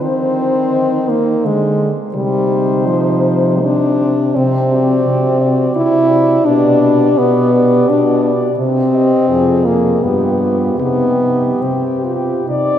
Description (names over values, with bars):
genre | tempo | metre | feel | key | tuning
classical, lyrical piece for horn quartet | 83 BPM | 3/4 | uneven beats, rubato | C minor | A4 = 440 Hz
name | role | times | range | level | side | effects
clear French horn | melody | 0.0-12.8 s | G4 to Eb5 | -21 LUFS | left 4 dB | none
mellow French horn | second line | 0.0-12.8 s | Eb4 to G4 | -22 LUFS | right 6 dB | none
mellow French horn | accompaniment | 0.0-12.5 s | F3 to E4 | -14 LUFS | left 1 dB | none
mellow French horn | bass | 0.0-12.8 s | F2 to Eb3 | -18 LUFS | right 1 dB | none
room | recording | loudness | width
wet cathedral reverb, RT60 6.6 s | heard from further back in the room | -12 LUFS | side -10 dB against mid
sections
0.0-12.8 A section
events
none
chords
0.0 Cm/Eb; 2.2 Cm; 4.4 D7/C; 6.5 G/B; 8.6 Cm; 9.3 Fm; 10.0 G7; 10.8 Cm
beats
| 0.02 0.74 1.46 | 2.16 2.87 3.64 | 4.36 5.06 5.75 | 6.46 7.17 7.89 | 8.59 9.29 10.03 | 10.81 11.62 12.48